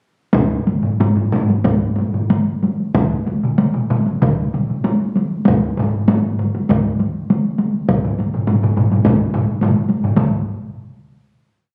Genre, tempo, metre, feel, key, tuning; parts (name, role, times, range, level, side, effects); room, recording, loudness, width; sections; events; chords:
japanese traditional, taiko drum ensemble; 91-115 BPM; 4/4; straight
solo taiko drums; percussion; 0.3-10.4 s; -23 LUFS; equal
taiko ensemble; percussion; 0.3-10.4 s; -20 LUFS; equal
taiko ensemble; percussion; 0.3-10.7 s; -22 LUFS; equal
taiko ensemble; percussion; 3.0-10.7 s; -24 LUFS; equal
wet recital hall reverb, RT60 1.2 s; recorded on a phone in the room, club reverb, compression; -17 LUFS; mono
0.3-10.2 A section; 10.2-11.7 final hit
speeding up 0.3-11.7